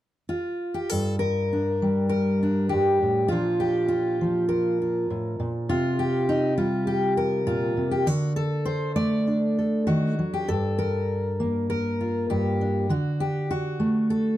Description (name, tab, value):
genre	folk, solo fingerstyle acoustic guitar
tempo	100 BPM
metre	4/4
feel	rubato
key	G minor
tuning	A4 = 440 Hz
part	fingerpicked steel-string acoustic guitar	solo	0.3-14.4 s	G2 to D5	-22 LUFS	equal	none
room	light reverb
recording	dark, warm production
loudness	-22 LUFS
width	side -14 dB against mid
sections	0.9-14.4 A section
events	none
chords	0.0 N.C.; 0.9 Gmadd9; 3.3 Bb; 5.7 C5; 8.1 D; 10.5 Gm7; 12.9 D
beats	0.29 | 0.90 1.51 2.11 2.71 | 3.31 3.91 4.50 5.10 | 5.69 6.28 6.87 7.47 | 8.06 8.66 9.27 9.88 | 10.49 11.10 11.70 12.30 | 12.90 13.50 14.09